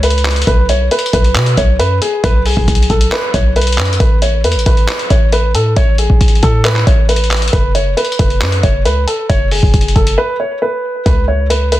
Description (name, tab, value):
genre	hip hop, trap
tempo	136 BPM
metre	4/4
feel	half-time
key	unclear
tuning	A4 = 441 Hz
part	dark baby grand piano	melody	0.0-11.8 s	G#4 to C#5	-16 LUFS	equal	ping-pong delay
part	warm 808-style bass	bass	0.0-11.8 s	F#1 to B2	-14 LUFS	equal	none
part	lo-fi sampler-style drum kit	drums	0.0-11.8 s	handclaps, hi-hat, kick drum	-14 LUFS	equal	soft clipping on snare
room	little or no reverb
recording	dense, heavily limited modern master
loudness	-10 LUFS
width	side -15 dB against mid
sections	0.0-11.1 A section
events	break 10.2-11.1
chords	0.5 B5; 4.0 A5; 7.5 F#5; 11.1 C#5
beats	0.03 | 0.47 0.91 1.35 1.79 | 2.24 2.68 3.12 3.56 | 4.00 4.44 4.88 5.32 | 5.76 6.21 6.65 7.09 | 7.53 7.97 8.41 8.85 | 9.29 9.74 10.18 10.62 | 11.06 11.50